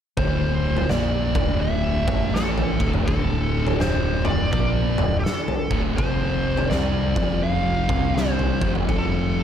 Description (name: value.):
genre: stoner and doom metal.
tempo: 83 BPM.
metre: 4/4.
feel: swing 62% on 8ths.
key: D minor.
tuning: A4 = 443 Hz.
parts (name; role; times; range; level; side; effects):
fuzz lead guitar; melody; 0.2-9.4 s; G4 to F5; -27 LUFS; equal; wah, distortion, analog delay.
thick fuzz guitar; riff; 0.2-9.4 s; D2 to C4; -27 LUFS; left 9 dB; distortion.
thick fuzz guitar; riff; 0.2-9.4 s; D2 to C4; -27 LUFS; right 9 dB; distortion.
growling picked electric bass; bass; 0.2-9.4 s; D1 to C2; -26 LUFS; equal; overdrive.
oversized low-tuned drum kit; drums; 0.2-9.1 s; kick drum, snare drum, toms; -24 LUFS; equal; none.
room: studio ambience.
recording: none.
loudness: -19 LUFS.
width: side -9 dB against mid.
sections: 0.2-9.4 A section.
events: none.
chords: 0.2 Dm; 2.0 A5; 2.7 Dm; 6.0 F5; 7.8 C5; 8.5 F5.